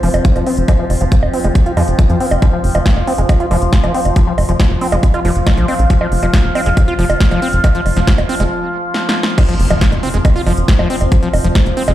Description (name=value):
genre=psychedelic trance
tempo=138 BPM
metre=4/4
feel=straight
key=unclear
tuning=A4 = 440 Hz
part: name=overtone-sweeping drone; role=sustained chords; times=0.0-11.9 s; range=F3 to F4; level=-21 LUFS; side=equal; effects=chorus, built-in reverb, sidechain pumping
part: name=overdriven acid bass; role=riff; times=0.0-11.9 s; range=F3 to F4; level=-20 LUFS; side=moving between left 4 dB and right 2 dB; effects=auto-pan, sidechain pumping, dub echo
part: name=tight sequencer bass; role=bass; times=0.0-11.9 s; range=F1 to F2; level=-15 LUFS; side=equal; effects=none
part: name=big-room dance drum kit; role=drums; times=0.0-11.9 s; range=bongos, crash cymbal, hi-hat, snare drum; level=-20 LUFS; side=right 1 dB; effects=none
part: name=deep dark ambient pad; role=texture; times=0.0-8.5 s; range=F4 to F5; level=-28 LUFS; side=right 1 dB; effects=none
part: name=electronic kick drum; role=drums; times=0.2-11.6 s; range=none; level=-11 LUFS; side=equal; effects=none
part: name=impact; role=sound effects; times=9.4-11.1 s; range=none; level=-22 LUFS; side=equal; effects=none
room=light reverb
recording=played on a big sound system in a bare room, large studio reverb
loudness=-11 LUFS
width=side -13 dB against mid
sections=0.0-9.4 A section; 9.4-11.9 B section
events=filter sweep on acid bass 0.0-9.4; break 8.5-9.4; drum fill 8.9-9.4; drop 9.4-11.9; impact 9.4-11.1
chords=0.0 F5